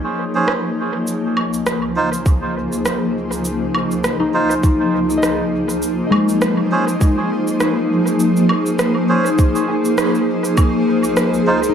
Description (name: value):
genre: ambient dub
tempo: 101 BPM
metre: 4/4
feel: swing 57% on 16ths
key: unclear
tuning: A4 = 440 Hz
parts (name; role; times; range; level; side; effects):
- granular cloud pad; sustained chords; 0.0-11.7 s; Db2 to Db5; -17 LUFS; left 1 dB; built-in reverb
- melodica; stabs; 0.3-11.6 s; Db4 to C5; -23 LUFS; right 3 dB; dub echo
- electronic rim click, shaker and woodblock; drums; 0.5-11.7 s; none; -23 LUFS; right 1 dB; dub echo
- electronic kick drum; drums; 2.3-10.7 s; none; -14 LUFS; equal; none
- concert harp; arpeggios; 4.2-11.7 s; Ab3 to Ab5; -21 LUFS; left 3 dB; tape echo
- backwards swelling texture; texture; 10.7-11.7 s; Ab3 to Ab4; -26 LUFS; right 5 dB; built-in reverb
room: wet echo chamber reverb, RT60 1.4 s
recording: none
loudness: -15 LUFS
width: side -8 dB against mid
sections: 0.0-10.6 A section; 10.6-11.7 B section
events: band accent 10.0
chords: 0.0 Bbm7; 1.1 Dbmaj7; 5.8 Bb7(no3); 10.6 Dbmaj7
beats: 0.48 | 1.07 1.67 2.26 2.85 | 3.45 4.04 4.64 5.23 | 5.82 6.42 7.01 7.61 | 8.20 8.79 9.39 9.98 | 10.58 11.17